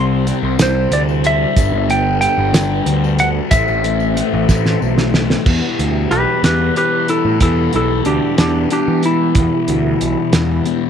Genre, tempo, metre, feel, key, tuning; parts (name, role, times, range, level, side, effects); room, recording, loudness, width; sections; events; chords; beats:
psychedelic rock; 62 BPM (dotted quarters); 6/8; straight; E minor; A4 = 440 Hz
clean lap steel guitar; melody; 0.0-10.9 s; D4 to G5; -18 LUFS; equal; tape echo
tonewheel organ; sustained chords; 0.0-10.9 s; G3 to C5; -26 LUFS; right 16 dB; slow rotary speaker, overdrive, chorus vibrato
thick fuzz guitar; riff; 0.0-10.9 s; E2 to C4; -20 LUFS; left 13 dB; distortion, phaser
fuzz picked electric bass; bass; 0.0-10.6 s; G1 to E3; -18 LUFS; right 1 dB; overdrive
cloth-damped thuddy drum kit; drums; 0.3-10.8 s; crash cymbal, hi-hat, kick drum, snare drum; -17 LUFS; right 1 dB
tambourine; percussion; 0.3-5.2 s; -34 LUFS; left 17 dB
studio reverb; 1960s-style stereo with parts hard left and right; -13 LUFS; side -8 dB against mid
0.0-5.5 A section; 5.5-10.9 B section
drum fill 4.5-5.5; electric slide guitar solo 5.5-10.9
0.0 C; 1.6 G; 3.5 Am; 5.5 Em
0.60 | 1.57 2.54 | 3.52 4.49 | 5.46 6.44 | 7.41 8.38 | 9.36 10.33